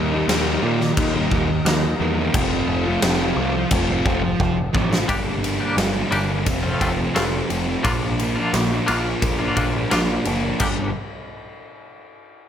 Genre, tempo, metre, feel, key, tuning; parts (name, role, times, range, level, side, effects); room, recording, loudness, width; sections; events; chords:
quiet-loud alternative rock; 87 BPM; 4/4; straight; G minor; A4 = 440 Hz
string machine, cellos; sustained chords; 0.0-5.1 s; F4 to Bb5; -30 LUFS; equal; ensemble chorus
fuzz guitar; riff; 0.0-10.9 s; F2 to F4; -22 LUFS; equal; distortion
growling picked electric bass; bass; 0.0-10.9 s; F1 to Bb2; -25 LUFS; equal; overdrive
huge arena drum kit; drums; 0.3-10.8 s; crash cymbal, kick drum, ride cymbal, snare drum; -24 LUFS; equal
twangy electric guitar; arpeggios; 5.1-10.9 s; G2 to G4; -26 LUFS; left 2 dB; tremolo
light reverb; -18 LUFS; side -9 dB against mid
0.0-5.1 A section; 5.1-10.6 B section; 10.6-12.5 C section
drum fill 4.4-5.1
0.0 Eb; 2.3 F; 5.1 Gm; 6.5 F; 7.8 Bb; 10.6 Gm